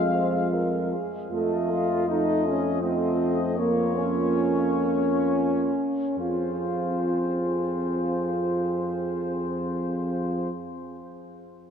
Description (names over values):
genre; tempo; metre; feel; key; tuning
classical, hymn-like piece for brass band; 62-81 BPM; 3/4; rubato; F minor; A4 = 440 Hz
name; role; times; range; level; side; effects
warm trumpet section; melody; 0.0-10.5 s; C5 to F5; -33 LUFS; left 6 dB; none
mellow French horn section; second line; 0.0-10.5 s; F4 to C5; -32 LUFS; right 8 dB; none
mellow trombone section; accompaniment; 0.0-10.5 s; A3 to F4; -27 LUFS; left 1 dB; none
warm euphonium; accompaniment; 0.0-10.5 s; Ab3 to C4; -31 LUFS; right 2 dB; none
warm tuba; bass; 0.0-10.5 s; F2; -31 LUFS; left 1 dB; none
room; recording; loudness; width
wet cathedral reverb, RT60 6.0 s; none; -23 LUFS; side -7 dB against mid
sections
0.0-1.3 A section; 1.3-6.2 B section; 6.2-11.7 C section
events
slowing down 0.1-6.2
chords
0.0 Fm; 1.3 F7; 3.6 Bbm/F; 6.2 Fm